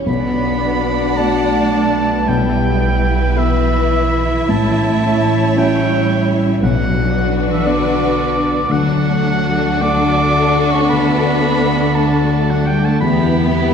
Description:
cinematic, emotional film score for orchestra; 56 BPM (dotted quarters); 6/8; rubato; B minor; A4 = 440 Hz
rich studio violin section; second line; 0.0-13.7 s; E4 to D5; -24 LUFS; left 3 dB
felt-muted upright piano; accompaniment; 0.0-13.7 s; A1 to E5; -22 LUFS; left 2 dB
concert harp; arpeggios; 0.0-13.7 s; A2 to D6; -22 LUFS; left 6 dB
warm studio violin section; melody; 0.1-13.7 s; G4 to F#5; -25 LUFS; left 3 dB
bright oboe; second line; 0.1-13.7 s; D5 to D6; -21 LUFS; right 1 dB
rich studio viola section; accompaniment; 0.1-13.7 s; B3 to E4; -25 LUFS; right 2 dB
dark French horn section; sustained chords; 0.1-13.7 s; A3 to E4; -23 LUFS; left 1 dB
clear studio double bass section; bass; 0.1-13.7 s; A1 to E2; -21 LUFS; right 2 dB
rich studio cello section; bass; 0.1-13.7 s; D3 to D4; -21 LUFS; right 3 dB
wet concert hall reverb, RT60 2.3 s; heard from further back in the room; -13 LUFS; side -7 dB against mid
0.1-13.7 A section
0.1 Bm; 2.3 Em/B; 4.5 A; 6.6 Bm; 8.7 D; 13.0 Em

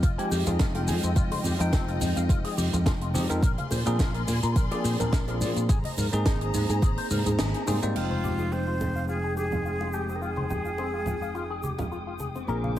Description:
nu-disco, nu disco; 106 BPM; 4/4; swing 54% on 16ths; F dorian; A4 = 438 Hz
warm studio string section; sustained chords; 0.0-12.8 s; Ab3 to Eb6; -37 LUFS; left 1 dB; sidechain pumping, low-pass filter
electric guitar with an envelope filter; riff; 0.0-12.8 s; F3 to Bb5; -36 LUFS; left 5 dB; analog chorus, low-pass filter, tape echo
fingered electric bass; bass; 0.0-12.8 s; F1 to Bb2; -29 LUFS; equal
electronic kick drum; drums; 0.0-6.9 s; -24 LUFS; equal
tight funk drum kit; drums; 0.0-8.1 s; crash cymbal, hi-hat, shaker, snare drum; -33 LUFS; right 1 dB
egg shaker, bongos and congas; percussion; 0.0-12.8 s; -36 LUFS; right 2 dB
bell-like tine electric piano; accompaniment; 0.2-12.8 s; F3 to G5; -31 LUFS; equal; phaser, sidechain pumping, tape echo
breathy jazz flute; melody; 8.0-11.9 s; F4 to C5; -33 LUFS; equal; tape echo
light reverb, small room ambience; heavily compressed radio sound; -24 LUFS; side -12 dB against mid
0.0-8.0 A section; 8.0-12.8 B section
kick drops out 7.4-8.0; band accent 7.4; filter sweep on string section 8.0-12.8
0.0 Fm9; 3.4 Bb9; 5.7 Abadd9; 8.0 Fm9

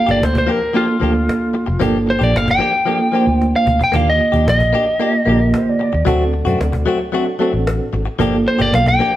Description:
straight-eighth soul blues; 113 BPM; 4/4; straight; G minor; A4 = 440 Hz
lightly driven lead guitar; melody; 0.0-9.2 s; F4 to G5; -17 LUFS; equal
reed electric piano; accompaniment; 0.0-9.0 s; D3 to C5; -19 LUFS; right 2 dB; overdrive, fast tremolo
direct-recorded clean electric guitar; stabs; 0.1-9.2 s; F3 to G4; -21 LUFS; left 4 dB
vintage muted fingered electric bass; bass; 0.1-9.0 s; F1 to F#2; -19 LUFS; equal
cajon; drums; 0.1-9.1 s; -25 LUFS; equal
dark upright piano; second line; 5.3-6.8 s; A4 to D5; -25 LUFS; right 5 dB
wet stone room reverb, RT60 1.3 s; band playing live in one room; -13 LUFS; side -13 dB against mid
0.0-9.2 A section
drum fill 3.4-3.9
0.0 Gm7; 3.9 Ebmaj7; 6.1 D7; 8.2 Gm7

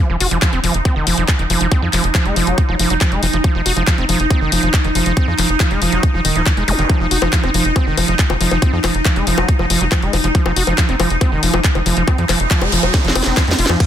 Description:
psychedelic trance; 139 BPM; 4/4; straight; F phrygian; A4 = 436 Hz
pulsing gated texture; sustained chords; 0.0-13.9 s; Eb4; -22 LUFS; equal; chorus, built-in reverb, sidechain pumping
overdriven acid bass; riff; 0.0-13.9 s; Eb3 to Gb4; -20 LUFS; right 1 dB; distortion, auto-pan, cassette tape, sidechain pumping, digital delay
tight sequencer bass; bass; 0.1-13.8 s; Eb1 to F2; -19 LUFS; equal
garage drum kit; drums; 0.2-13.9 s; bongos, crash cymbal, handclaps, hi-hat, snare drum; -20 LUFS; left 3 dB
electronic kick drum; drums; 0.4-13.9 s; -15 LUFS; equal
zap and noise sweep; sound effects; 6.7-6.8, 12.2-13.8 s; -24 LUFS; right 2 dB
light reverb; dense, heavily limited modern master; -13 LUFS; side -10 dB against mid
0.0-13.9 A section
noise sweep 12.2-13.8; drum fill 12.9-13.8
0.0 F5

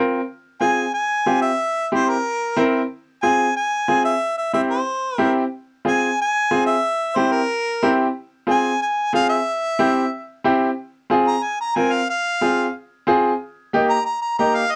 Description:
latin; 183 BPM; 4/4; straight; F harmonic minor, F minor from 10.8 s; A4 = 441 Hz
bright upright piano; accompaniment; 0.0-14.6 s; Bb3 to Bb4; -21 LUFS; equal; cassette tape
clear harmonica; melody; 0.6-14.8 s; Bb4 to Bb5; -23 LUFS; equal; cassette tape
moderate studio ambience, RT60 0.5 s; home recording on cassette; -20 LUFS; mono
0.3-10.8 A section; 10.8-14.8 B section
harmonica solo 10.8-14.8
0.3 Fm; 1.6 C7; 2.9 Fm; 4.2 C; 5.5 Fm; 6.8 C7; 8.2 Fm; 9.5 C; 10.8 Fm; 13.4 Eb

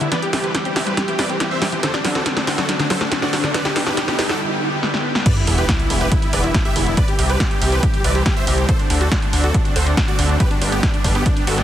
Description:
uplifting trance; 140 BPM; 4/4; straight; E minor; A4 = 440 Hz
supersaw chords; melody; 0.0-11.6 s; B3 to E5; -24 LUFS; right 1 dB; sidechain pumping, tape echo
lush unison pad; sustained chords; 0.0-11.6 s; D3 to G4; -26 LUFS; left 1 dB; chorus, sidechain pumping
analog pluck; arpeggios; 0.0-4.3 s; D3 to G4; -27 LUFS; left 2 dB; chorus, sidechain pumping, tape echo
gritty driven synth bass; bass; 0.0-11.6 s; E1 to D2; -21 LUFS; equal; sidechain pumping, high-pass filter
punchy analog drum machine; drums; 0.0-11.6 s; crash cymbal, hi-hat, snare drum; -22 LUFS; equal
riser and sub drop; sound effects; 1.2-7.0 s; -27 LUFS; equal
electronic kick drum; drums; 5.3-11.3 s; -19 LUFS; equal
light reverb, digital ambience; heavily compressed radio sound; -16 LUFS; side -11 dB against mid
0.0-5.3 A section; 5.3-11.6 B section
build-up 0.0-5.3; drum fill 0.0-4.4, 4.8-5.3; riser 1.2-4.4; drop 5.3-11.6; impact 5.3-7.0
0.1 C; 1.8 D7; 3.5 G; 5.3 Em7; 7.0 C; 8.7 D7; 10.4 G

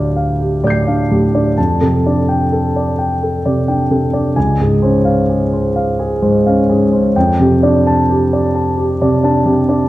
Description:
classical, impressionist solo piano; 43 BPM (dotted quarters); 6/8; rubato; F major; A4 = 440 Hz
warm grand piano; solo; 0.0-9.9 s; Db2 to C7; -12 LUFS; equal
wet recital hall reverb, RT60 1.3 s; dark, warm production; -12 LUFS; side -16 dB against mid
0.0-9.9 A section
0.0 Dm7; 1.6 F69; 4.4 Dbmaj7; 7.2 F69

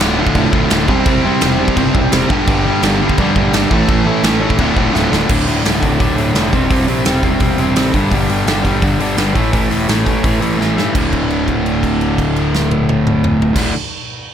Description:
punk rock; 170 BPM; 4/4; straight; A4 = 440 Hz
biting overdriven guitar; riff; 0.0-5.3 s; D2 to C5; -20 LUFS; right 2 dB
cranked stack guitar; riff; 0.0-13.7 s; D2 to C4; -16 LUFS; left 5 dB; overdrive
distorted electric guitar; riff; 0.0-13.7 s; D2 to C4; -19 LUFS; right 13 dB; distortion
fuzz picked electric bass; bass; 0.0-13.7 s; D1 to G2; -20 LUFS; right 1 dB; overdrive
big rock drum kit; drums; 0.0-13.6 s; crash cymbal, hi-hat, kick drum, snare drum, toms; -18 LUFS; right 1 dB
little or no reverb; -12 LUFS; side -9 dB against mid
0.0-5.3 A section; 5.3-10.9 B section; 10.9-13.8 C section
drum fill 4.9-5.3, 10.6-10.9; held note 10.9-13.6
0.0 Dm; 0.9 C/E; 2.3 Gm; 3.7 A; 4.6 Dm; 6.5 C/E; 7.9 G5; 9.4 A5; 10.9 D5

